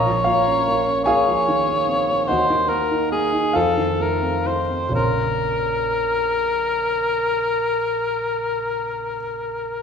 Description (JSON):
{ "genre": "classical, romantic duo for cor anglais and grand piano", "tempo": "42-50 BPM (dotted quarters)", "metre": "12/8", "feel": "rubato", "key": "Bb minor", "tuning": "A4 = 440 Hz", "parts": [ { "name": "warm cor anglais", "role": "melody", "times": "0.0-9.8 s", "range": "Ab4 to Db5", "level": "-20 LUFS", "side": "left 2 dB", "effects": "none" }, { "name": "dark grand piano", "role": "accompaniment", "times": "0.0-9.8 s", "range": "Bb1 to Bb5", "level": "-23 LUFS", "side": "right 1 dB", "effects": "none" } ], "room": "wet recital hall reverb, RT60 1.8 s", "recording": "recorded in a church or concert hall", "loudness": "-18 LUFS", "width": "side -6 dB against mid", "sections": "0.0-9.8 A section", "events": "none", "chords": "0.0 Bbm; 2.3 Ebm; 3.6 F7; 4.9 Bbm", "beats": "1.06 2.27 3.55 | 4.94 6.37 7.78 9.20" }